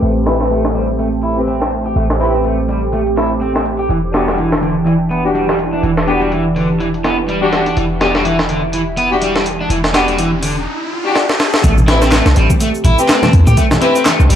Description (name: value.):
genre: breakbeat, breaks.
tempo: 124 BPM.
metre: 4/4.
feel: swing 57% on 16ths.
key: A dorian.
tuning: A4 = 442 Hz.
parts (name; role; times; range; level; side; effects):
phased analog pad; sustained chords; 0.0-14.4 s; E3 to G4; -19 LUFS; right 2 dB; phaser, chorus, sidechain pumping.
overdriven semi-hollow guitar; riff; 0.0-14.4 s; D3 to G4; -18 LUFS; equal; tube saturation, dub echo.
warm 808-style bass; bass; 0.0-14.4 s; E1 to A2; -17 LUFS; equal; none.
breakbeat sampler-style drum kit; drums; 0.0-14.4 s; hi-hat, kick drum, snare drum; -17 LUFS; equal; high-pass filter on hats, high-pass filter on snare, high-pass filter on kick, high-pass filter on room.
rich chamber string section; stabs; 0.3-13.9 s; C4 to B4; -19 LUFS; left 3 dB; dub echo.
riser; sound effects; 9.0-11.6 s; none; -24 LUFS; equal; none.
electronic shaker and handclaps; drums; 11.6-14.3 s; none; -23 LUFS; right 1 dB; overdrive.
congas; percussion; 11.8-14.2 s; none; -20 LUFS; left 1 dB; none.
room: light reverb.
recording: vinyl crackle, low-pass filter.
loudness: -12 LUFS.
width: side -9 dB against mid.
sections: 0.0-11.6 A section; 11.6-14.4 B section.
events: filter sweep on overdriven electric guitar 0.0-11.6; filter sweep 0.0-11.6; riser 9.0-11.6; drum fill 11.2-11.6; drop 11.6-14.4.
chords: 0.0 Am7; 3.9 Em7; 11.6 Am9.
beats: | 0.03 0.51 0.99 1.48 | 1.96 2.44 2.93 3.41 | 3.90 4.38 4.87 5.35 | 5.83 6.32 6.80 7.28 | 7.77 8.25 8.74 9.22 | 9.70 10.19 10.67 11.15 | 11.64 12.12 12.61 13.09 | 13.57 14.06.